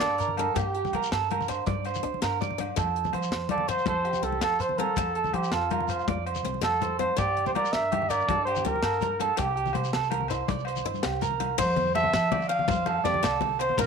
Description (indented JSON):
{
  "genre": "highlife guitar band",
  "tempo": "109 BPM (dotted quarters)",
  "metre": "12/8",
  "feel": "straight",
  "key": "F major",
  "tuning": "A4 = 438 Hz",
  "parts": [
    { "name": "breathy trumpet", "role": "melody", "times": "0.0-13.9 s", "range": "F4 to F5", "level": "-27 LUFS", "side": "equal", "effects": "slapback echo" },
    { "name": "picked swing-style acoustic guitar", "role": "accompaniment", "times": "0.0-13.9 s", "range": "A3 to E4", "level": "-36 LUFS", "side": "left 15 dB", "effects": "none" },
    { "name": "electric guitar at the edge of break-up", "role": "arpeggios", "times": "0.0-13.9 s", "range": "G4 to D5", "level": "-29 LUFS", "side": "right 13 dB", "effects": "slapback echo" },
    { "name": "upright bass", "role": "bass", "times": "0.0-13.9 s", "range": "Bb1 to G3", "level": "-34 LUFS", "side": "equal", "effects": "none" },
    { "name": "tight funk drum kit", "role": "drums", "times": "0.0-13.9 s", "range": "crash cymbal, hi-hat, kick drum, ride cymbal, snare drum", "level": "-35 LUFS", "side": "left 1 dB", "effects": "none" },
    { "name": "agogo bells", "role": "percussion", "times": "0.0-13.9 s", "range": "none", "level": "-38 LUFS", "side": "left 15 dB", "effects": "none" },
    { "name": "shekere", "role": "percussion", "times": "0.2-13.9 s", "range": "none", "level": "-38 LUFS", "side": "left 6 dB", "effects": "none" },
    { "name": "congas", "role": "percussion", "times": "0.3-13.9 s", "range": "none", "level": "-34 LUFS", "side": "left 12 dB", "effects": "none" }
  ],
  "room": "light reverb, studio reverb",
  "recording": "1960s-style stereo with parts hard left and right",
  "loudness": "-24 LUFS",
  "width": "side -6 dB against mid",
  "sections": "0.0-11.6 A section; 11.6-13.9 B section",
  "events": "none",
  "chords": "0.0 Gm; 2.8 F; 7.2 Gm; 9.4 C; 11.6 F",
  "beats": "0.01 | 0.56 1.11 1.66 2.22 | 2.77 3.32 3.87 4.42 | 4.97 5.53 6.08 6.63 | 7.18 7.73 8.28 8.84 | 9.39 9.94 10.49 11.04 | 11.59 12.13 12.68 13.23 | 13.78"
}